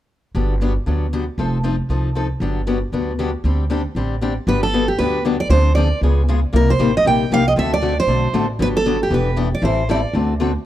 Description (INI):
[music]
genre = acoustic string swing (jazz manouche)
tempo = 233 BPM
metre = 4/4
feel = swing 58% on 8ths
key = G major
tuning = A4 = 440 Hz
[part]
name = picked acoustic archtop guitar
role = accompaniment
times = 0.3-10.5 s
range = C3 to A4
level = -21 LUFS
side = left 4 dB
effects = none
[part]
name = upright bass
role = bass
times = 0.3-10.6 s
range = E1 to D2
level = -20 LUFS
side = equal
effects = none
[part]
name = picked steel-string acoustic guitar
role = melody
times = 4.5-10.1 s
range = G4 to G5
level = -19 LUFS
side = right 3 dB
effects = none
[sound]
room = studio reverb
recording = dry, close 1970s-style studio recording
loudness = -16 LUFS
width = side -13 dB against mid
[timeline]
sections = 0.4-4.5 A section; 4.5-10.7 B section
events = none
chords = 0.4 Gmaj7; 1.4 F7; 2.4 Gmaj7; 3.4 D7sus4; 4.5 Gmaj7; 5.5 Dm7b5; 6.0 C#7; 6.5 Cm7; 7.6 D7; 8.6 Gmaj7; 9.1 Em7; 9.6 Am7; 10.1 D7